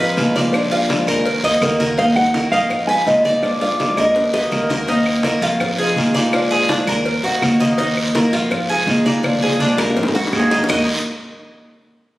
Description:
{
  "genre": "latin, Cuban son and guajira",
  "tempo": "165 BPM",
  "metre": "4/4",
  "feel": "straight",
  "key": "Eb harmonic minor",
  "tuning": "A4 = 440 Hz",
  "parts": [
    { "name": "breathy mellow silver concert flute", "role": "second line", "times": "0.0-0.7, 4.3-4.9, 10.3-10.9 s", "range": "F4 to Cb5", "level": "-25 LUFS", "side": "right 2 dB", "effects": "none" },
    { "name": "picked steel-string acoustic guitar", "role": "accompaniment", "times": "0.0-10.8 s", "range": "Cb3 to Gb4", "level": "-21 LUFS", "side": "left 1 dB", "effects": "none" },
    { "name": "Cuban tres", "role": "arpeggios", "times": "0.0-10.9 s", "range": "D4 to Eb5", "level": "-21 LUFS", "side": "right 1 dB", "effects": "none" },
    { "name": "upright bass", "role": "bass", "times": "0.0-10.9 s", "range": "Bb1 to F2", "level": "-23 LUFS", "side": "equal", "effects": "none" },
    { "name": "congas", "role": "percussion", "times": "0.0-10.8 s", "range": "none", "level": "-26 LUFS", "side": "equal", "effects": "none" },
    { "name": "cowbell and bongos", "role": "percussion", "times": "0.2-10.8 s", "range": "none", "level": "-26 LUFS", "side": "left 2 dB", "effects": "none" },
    { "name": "guiro", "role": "percussion", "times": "0.2-10.8 s", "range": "none", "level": "-26 LUFS", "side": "right 1 dB", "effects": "none" },
    { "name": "claves", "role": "percussion", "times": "0.5-10.8 s", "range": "none", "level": "-30 LUFS", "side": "equal", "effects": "none" },
    { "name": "nylon-string guitar", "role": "melody", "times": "1.6-4.7 s", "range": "Bb4 to Ab5", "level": "-17 LUFS", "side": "equal", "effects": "none" }
  ],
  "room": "wet recital hall reverb, RT60 1.5 s",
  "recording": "recorded on a phone in the room, studio reverb, compression",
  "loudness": "-14 LUFS",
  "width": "side -17 dB against mid",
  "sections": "0.0-4.9 A section; 4.9-10.7 B section; 10.7-12.2 C section",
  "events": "drum fill 4.0-4.9, 9.2-10.7",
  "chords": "0.0 Fm7b5; 0.5 Bb7; 1.3 Ebm; 2.7 Fm7b5; 3.4 Bb7; 4.2 Ebm; 5.6 Bb7sus4; 7.1 Ebm; 8.5 Bb7sus4; 10.0 Ebm; 10.7 Eb5",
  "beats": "0.17 | 0.54 0.90 1.26 1.62 | 1.98 2.34 2.71 3.07 | 3.43 3.79 4.15 4.52 | 4.88 5.24 5.61 5.97 | 6.33 6.69 7.06 7.42 | 7.78 8.15 8.51 8.87 | 9.24 9.60 9.97 10.33 | 10.69"
}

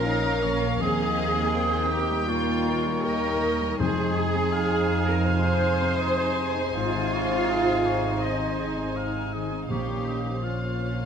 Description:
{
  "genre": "cinematic",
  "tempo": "81 BPM",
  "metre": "4/4",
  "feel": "rubato",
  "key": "Bb dorian",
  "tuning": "A4 = 445 Hz",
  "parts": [
    { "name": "warm studio violin section", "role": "melody", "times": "0.0-11.1 s", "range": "F5 to Ab5", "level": "-35 LUFS", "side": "left 3 dB", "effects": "none" },
    { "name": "warm clarinet", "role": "second line", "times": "0.0-11.1 s", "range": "F4 to F5", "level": "-32 LUFS", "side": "left 1 dB", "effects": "none" },
    { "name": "warm symphonic violin section", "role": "second line", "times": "0.0-11.1 s", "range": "Bb4 to Eb5", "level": "-36 LUFS", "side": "left 4 dB", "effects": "none" },
    { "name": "dark symphonic viola section", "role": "accompaniment", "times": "0.0-11.1 s", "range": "Bb3 to Eb4", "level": "-35 LUFS", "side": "right 3 dB", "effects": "none" },
    { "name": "warm concert grand piano", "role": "accompaniment", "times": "0.0-11.1 s", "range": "Eb2 to Db5", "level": "-33 LUFS", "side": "left 3 dB", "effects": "none" },
    { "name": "mellow French horn section", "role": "sustained chords", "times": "0.0-11.1 s", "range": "C3 to Eb4", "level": "-34 LUFS", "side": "left 4 dB", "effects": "none" },
    { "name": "concert harp", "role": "arpeggios", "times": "0.0-11.1 s", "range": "Ab2 to C6", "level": "-35 LUFS", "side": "left 9 dB", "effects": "none" },
    { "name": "dark symphonic cello section", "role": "bass", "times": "0.0-11.1 s", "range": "F4 to Eb5", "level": "-29 LUFS", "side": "right 3 dB", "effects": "none" },
    { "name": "warm symphonic double bass section", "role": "bass", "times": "0.0-11.1 s", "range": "Ab1 to F2", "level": "-30 LUFS", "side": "right 3 dB", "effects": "none" },
    { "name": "warm oboe", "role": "second line", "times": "0.1-11.1 s", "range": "C5 to F5", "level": "-32 LUFS", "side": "right 2 dB", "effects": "none" },
    { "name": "timpani", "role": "percussion", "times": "3.8-4.9, 9.7-10.8 s", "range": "F2 to Bb2", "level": "-34 LUFS", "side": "equal", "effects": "none" }
  ],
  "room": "moderate scoring stage reverb, RT60 1.6 s",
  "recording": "none",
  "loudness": "-22 LUFS",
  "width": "side -7 dB against mid",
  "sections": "0.0-11.1 A section",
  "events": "none",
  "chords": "0.0 Bbmadd9; 0.8 Eb; 3.8 Fm7; 6.8 Ab; 9.7 Bbmadd9",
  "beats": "0.05 | 0.80 1.54 2.28 3.05 | 3.79 4.53 5.26 5.99 | 6.75 7.49 8.23 8.96 | 9.70 10.44"
}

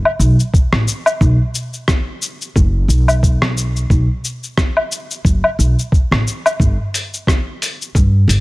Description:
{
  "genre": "folktronica",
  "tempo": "89 BPM",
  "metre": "4/4",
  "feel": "swing 56% on 16ths",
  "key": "unclear",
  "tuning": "A4 = 441 Hz",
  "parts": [
    { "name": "lo-fi sampler-style drum kit", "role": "drums", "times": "0.1-8.4 s", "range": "hi-hat, rim click, shaker, woodblock", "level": "-18 LUFS", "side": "left 1 dB", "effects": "none" },
    { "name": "upright bass", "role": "bass", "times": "0.2-8.4 s", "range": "F#1 to G2", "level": "-15 LUFS", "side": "equal", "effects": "none" },
    { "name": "electronic kick drum", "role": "drums", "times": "0.5-8.1 s", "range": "none", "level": "-14 LUFS", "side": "equal", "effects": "none" }
  ],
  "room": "little or no reverb",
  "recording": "none",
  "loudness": "-13 LUFS",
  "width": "side -21 dB against mid",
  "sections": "0.0-8.4 A section",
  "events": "none",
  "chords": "none",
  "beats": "0.53 | 1.21 1.88 2.56 3.23 | 3.90 4.58 5.25 5.93 | 6.60 7.28 7.95"
}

